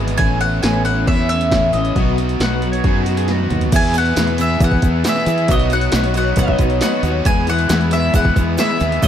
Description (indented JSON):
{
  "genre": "folk rock and heartland rock",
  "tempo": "136 BPM",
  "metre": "4/4",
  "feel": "straight",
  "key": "E major",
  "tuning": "A4 = 442 Hz",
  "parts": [
    { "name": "picked twelve-string acoustic guitar", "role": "accompaniment", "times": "0.0-9.1 s", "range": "E2 to C#5", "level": "-23 LUFS", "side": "left 6 dB", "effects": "none" },
    { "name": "overdriven electric guitar", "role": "riff", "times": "0.0-9.1 s", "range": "E2 to G#4", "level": "-23 LUFS", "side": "right 2 dB", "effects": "none" },
    { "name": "fingered electric bass", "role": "bass", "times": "0.0-9.1 s", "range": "G#1 to E3", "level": "-19 LUFS", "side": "equal", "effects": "none" },
    { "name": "punchy analog drum machine", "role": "drums", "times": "0.1-9.1 s", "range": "crash cymbal, hi-hat, kick drum, snare drum, toms", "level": "-19 LUFS", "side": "equal", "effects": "none" },
    { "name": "mandolin", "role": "melody", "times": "0.2-9.1 s", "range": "D#5 to G#5", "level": "-20 LUFS", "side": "equal", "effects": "analog delay" },
    { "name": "electric guitar through a small old amp", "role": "second line", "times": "2.4-3.6 s", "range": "F#4 to F#5", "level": "-26 LUFS", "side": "right 1 dB", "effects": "lush chorus" },
    { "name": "clear upright piano", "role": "accompaniment", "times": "3.7-9.1 s", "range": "G#4 to F#5", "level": "-29 LUFS", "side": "right 6 dB", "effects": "none" },
    { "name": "tonewheel organ", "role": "sustained chords", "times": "3.7-9.1 s", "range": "B3 to C#5", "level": "-32 LUFS", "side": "right 1 dB", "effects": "none" },
    { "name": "egg shaker", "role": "percussion", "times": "3.7-9.1 s", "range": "none", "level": "-34 LUFS", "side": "right 10 dB", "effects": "none" }
  ],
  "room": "light reverb",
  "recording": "dark, warm production",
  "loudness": "-14 LUFS",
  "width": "side -9 dB against mid",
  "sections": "0.0-3.7 A section; 3.7-9.1 B section",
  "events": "drum fill 3.3-3.7",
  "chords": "0.2 Aadd9; 2.0 B; 3.7 E; 5.5 Badd9; 7.3 E",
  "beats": "| 0.19 0.63 1.07 1.51 | 1.96 2.40 2.84 3.29 | 3.73 4.17 4.61 5.05 | 5.50 5.94 6.38 6.82 | 7.26 7.70 8.14 8.59 | 9.03"
}